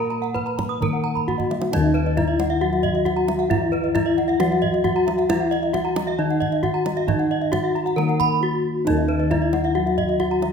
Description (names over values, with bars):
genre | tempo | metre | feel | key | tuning
Balinese gamelan | 134 BPM | 4/4 | straight | Eb pelog | A4 = 438 Hz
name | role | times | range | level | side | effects
gamelan-type bronze metallophone | melody | 0.0-10.5 s | Eb4 to Cb5 | -23 LUFS | left 1 dB | none
gamelan-type bronze metallophone | accompaniment | 0.0-10.5 s | Eb3 to Bb3 | -31 LUFS | left 1 dB | none
gamelan-type bronze metallophone | arpeggios | 0.0-10.5 s | Eb5 to Cb6 | -28 LUFS | left 5 dB | none
gamelan-type bossed gongs | bass | 0.0-10.5 s | Eb2 to Bb4 | -25 LUFS | left 2 dB | none
gamelan-type bronze metallophone | arpeggios | 0.1-10.4 s | Cb5 to Eb6 | -28 LUFS | right 6 dB | none
kendang | percussion | 0.1-10.5 s | none | -29 LUFS | right 5 dB | none
room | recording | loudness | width
moderate recital hall reverb, RT60 1.4 s | minimal, uncompressed stereo recording | -19 LUFS | side -6 dB against mid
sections
0.0-1.7 A section; 1.7-10.5 B section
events
drum fill 1.2-1.7, 8.5-8.9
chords
none